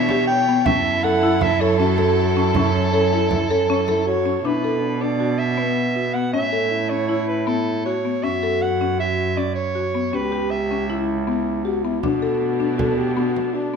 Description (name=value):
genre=contemporary instrumental, chamber music in an uneven meter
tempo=158 BPM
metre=5/4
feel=straight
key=B minor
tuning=A4 = 441 Hz
part: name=warm soprano saxophone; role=melody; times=0.0-11.1 s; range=A4 to G5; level=-24 LUFS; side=right 1 dB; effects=none
part: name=mellow French horn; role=second line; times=0.0-13.8 s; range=B3 to A4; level=-24 LUFS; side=left 4 dB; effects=none
part: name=rich studio string section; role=sustained chords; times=0.0-4.4, 12.0-13.8 s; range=E3 to C#5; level=-30 LUFS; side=left 1 dB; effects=none
part: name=buzzing marimba with medium mallets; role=arpeggios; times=0.0-13.8 s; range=B3 to A4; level=-23 LUFS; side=left 2 dB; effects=none
part: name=warm cello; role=bass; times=0.0-13.8 s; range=C#2 to B2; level=-25 LUFS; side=right 6 dB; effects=none
part: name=frame drum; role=percussion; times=0.1-4.2, 12.0-13.5 s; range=none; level=-27 LUFS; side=right 5 dB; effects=none
room=moderate scoring stage reverb, RT60 1.7 s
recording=minimal, uncompressed stereo recording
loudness=-18 LUFS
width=side -6 dB against mid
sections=0.0-4.4 A section; 4.4-13.8 B section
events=none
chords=0.0 Em7/B; 0.7 F#m7; 4.4 Bm7; 6.3 Aadd9; 8.2 F#m; 10.1 C#m7b5; 12.0 Bm7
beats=0.28 | 0.66 1.04 1.41 1.79 2.17 | 2.55 2.93 3.31 3.69 4.06 | 4.44 4.82 5.20 5.58 5.96 | 6.34 6.72 7.10 7.48 7.86 | 8.23 8.62 8.99 9.37 9.75 | 10.13 10.51 10.89 11.27 11.65 | 12.03 12.41 12.79 13.17 13.55